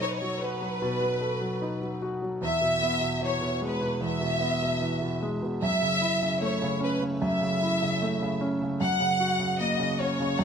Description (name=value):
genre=pop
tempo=75 BPM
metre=4/4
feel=straight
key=E major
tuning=A4 = 441 Hz
part: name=warm symphonic violin section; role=melody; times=0.0-10.4 s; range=B4 to F#5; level=-28 LUFS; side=equal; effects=none
part: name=warm concert grand piano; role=accompaniment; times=0.0-10.4 s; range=E2 to A4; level=-28 LUFS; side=right 1 dB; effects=none
room=moderate plate reverb, RT60 2.7 s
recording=none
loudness=-25 LUFS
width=side -7 dB against mid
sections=0.0-10.4 A section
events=none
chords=0.0 B7; 2.4 E; 5.6 F#m7; 8.8 F#